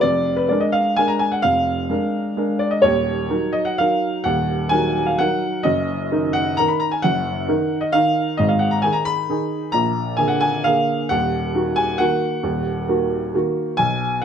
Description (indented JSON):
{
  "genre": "classical, piano waltz",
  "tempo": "122-140 BPM",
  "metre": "3/4",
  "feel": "rubato",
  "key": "Eb minor",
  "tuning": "A4 = 440 Hz",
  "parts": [
    { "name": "clear upright piano", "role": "solo", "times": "0.0-14.2 s", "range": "Eb1 to Cb6", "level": "-17 LUFS", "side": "equal", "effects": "none" }
  ],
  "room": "light reverb",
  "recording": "close, detailed microphones",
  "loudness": "-17 LUFS",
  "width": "side -8 dB against mid",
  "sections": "0.0-14.2 A section",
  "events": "none",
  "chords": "0.0 Bb7/F; 2.8 Ebm; 5.6 Ebm/Gb; 8.4 Abm; 9.7 Bb7; 11.1 Ebm"
}